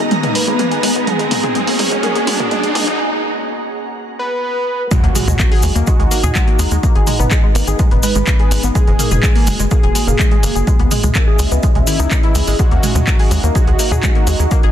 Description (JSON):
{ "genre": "melodic techno", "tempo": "125 BPM", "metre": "4/4", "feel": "straight", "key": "unclear", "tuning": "A4 = 440 Hz", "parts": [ { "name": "deep dark ambient pad", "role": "sustained chords", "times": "0.0-14.7 s", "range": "G#3 to A#5", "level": "-24 LUFS", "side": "equal", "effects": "chorus, built-in reverb, sidechain pumping" }, { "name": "tight sequenced synth", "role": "arpeggios", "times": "0.0-14.7 s", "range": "D#3 to G#4", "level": "-22 LUFS", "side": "right 1 dB", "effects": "chorus, phaser, vintage 12-bit sampler grit, sidechain pumping, ping-pong delay" }, { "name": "tight sequencer bass", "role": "bass", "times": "0.0-14.7 s", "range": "E1 to D#2", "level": "-17 LUFS", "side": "equal", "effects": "sidechain pumping, high-pass filter" }, { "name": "overtone-sweeping drone", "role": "drone", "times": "0.0-3.0 s", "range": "G#2 to G#3", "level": "-36 LUFS", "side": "equal", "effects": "none" }, { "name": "riser and impact", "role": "sound effects", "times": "0.0-6.8 s", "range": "none", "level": "-21 LUFS", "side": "equal", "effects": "none" }, { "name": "ethereal airy pad", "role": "texture", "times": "0.0-3.0 s", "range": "B3 to A#5", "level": "-22 LUFS", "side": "equal", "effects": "ensemble chorus, built-in reverb, sidechain pumping" }, { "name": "punchy analog drum machine", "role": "drums", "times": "0.1-14.7 s", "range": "handclaps, hi-hat, toms", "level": "-21 LUFS", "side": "equal", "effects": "none" }, { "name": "fat analog lead", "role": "melody", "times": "0.4-14.7 s", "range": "E4 to B4", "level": "-23 LUFS", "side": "right 1 dB", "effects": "phaser, sidechain pumping, dub echo" }, { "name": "electronic kick drum", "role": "drums", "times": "4.9-14.6 s", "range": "none", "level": "-14 LUFS", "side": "equal", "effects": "none" }, { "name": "cabasa", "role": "percussion", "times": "4.9-14.6 s", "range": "none", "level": "-25 LUFS", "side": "left 4 dB", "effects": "none" } ], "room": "light reverb", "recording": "dense, heavily limited modern master, high-pass filter", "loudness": "-12 LUFS", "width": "side -10 dB against mid", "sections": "0.0-4.9 A section; 4.9-14.7 B section", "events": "build-up 0.0-4.9; drum fill 0.0-3.0; riser 0.0-3.0; filter sweep on synth arpeggio sound 0.0-4.9; filter sweep on analog synth lead 0.0-4.9; filter sweep 0.0-4.9; break 3.0-4.9; drop 4.9-14.7; impact 4.9-6.8", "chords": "0.0 G#madd9; 1.1 F#add9; 3.0 N.C.; 4.9 D#m; 6.8 G#madd9; 8.8 F#add9; 10.7 C#m; 12.6 D#m" }